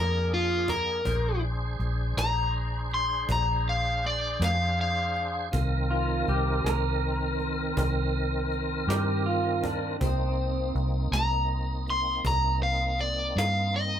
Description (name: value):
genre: slow blues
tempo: 54 BPM (dotted quarters)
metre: 12/8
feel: straight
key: unclear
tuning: A4 = 440 Hz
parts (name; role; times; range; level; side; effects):
- overdriven semi-hollow guitar; melody; 0.0-14.0 s; F4 to C6; -27 LUFS; left 1 dB; none
- tonewheel organ; sustained chords; 0.0-14.0 s; Eb3 to C5; -33 LUFS; right 1 dB; chorus vibrato, slow rotary speaker
- vintage muted fingered electric bass; bass; 0.0-14.0 s; Bb1 to G2; -28 LUFS; equal; none
- cajon; drums; 0.7-13.5 s; none; -36 LUFS; equal; none
- electric guitar through a small old amp; second line; 5.9-10.7 s; C4 to Bb4; -31 LUFS; right 1 dB; lush chorus, digital delay
room: light reverb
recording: none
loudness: -25 LUFS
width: side -9 dB against mid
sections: 0.0-14.0 A section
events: none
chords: 0.0 Bb9; 5.5 Cm7